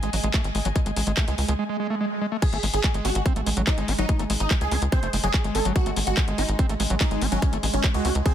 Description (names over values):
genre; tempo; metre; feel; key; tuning
psychedelic trance; 144 BPM; 4/4; straight; unclear; A4 = 441 Hz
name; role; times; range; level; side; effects
evolving wavetable pad; sustained chords; 0.0-8.3 s; G#3; -34 LUFS; right 3 dB; chorus, built-in reverb, sidechain pumping
overdriven acid bass; riff; 0.0-8.3 s; F#3 to D#4; -30 LUFS; moving between left 8 dB and right 8 dB; distortion, auto-pan, sidechain pumping, dub echo
tight sequencer bass; bass; 0.0-8.2 s; F#1 to C#2; -26 LUFS; equal; none
drum and bass drum kit; drums; 0.0-8.3 s; crash cymbal, handclaps, hi-hat; -29 LUFS; left 1 dB; none
dark symphonic string section; texture; 0.0-1.6 s; G#4 to G#5; -37 LUFS; left 1 dB; sidechain pumping
electronic kick drum; drums; 0.3-8.3 s; none; -22 LUFS; equal; none
swell; sound effects; 1.7-2.4 s; none; -30 LUFS; right 3 dB; none
supersaw stab; melody; 2.4-8.3 s; C#4 to B#4; -29 LUFS; right 1 dB; phaser, sidechain pumping, dub echo
room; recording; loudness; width
digital ambience; dense, heavily limited modern master; -21 LUFS; side -10 dB against mid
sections
0.0-2.4 A section; 2.4-8.3 B section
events
break 1.6-2.4; swell 1.7-2.4; drop 2.4-8.3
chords
0.0 G#5